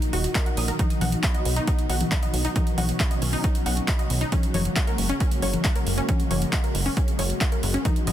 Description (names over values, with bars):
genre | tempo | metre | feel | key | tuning
uplifting trance | 136 BPM | 4/4 | straight | unclear | A4 = 439 Hz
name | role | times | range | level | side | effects
analog string pad | sustained chords | 0.0-8.1 s | Bb2 to Gb4 | -30 LUFS | equal | ensemble chorus, sidechain pumping
big-room dance drum kit | drums | 0.0-8.1 s | congas, handclaps, hi-hat | -28 LUFS | left 1 dB | sidechain pumping on hats, sidechain pumping on perc
wide unison pluck | arpeggios | 0.1-8.1 s | Db4 to Eb6 | -31 LUFS | left 1 dB | sidechain pumping, digital delay
plucky analog bass | bass | 0.1-8.1 s | Eb1 to B1 | -26 LUFS | equal | sidechain pumping
electronic kick drum | drums | 0.4-7.9 s | none | -24 LUFS | equal | overdrive
room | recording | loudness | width
digital ambience | dense, heavily limited modern master | -21 LUFS | side -11 dB against mid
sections
0.0-8.1 A section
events
filter sweep on analog synth pad 0.0-8.1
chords
0.0 Ebm; 0.8 B; 4.3 Gbadd9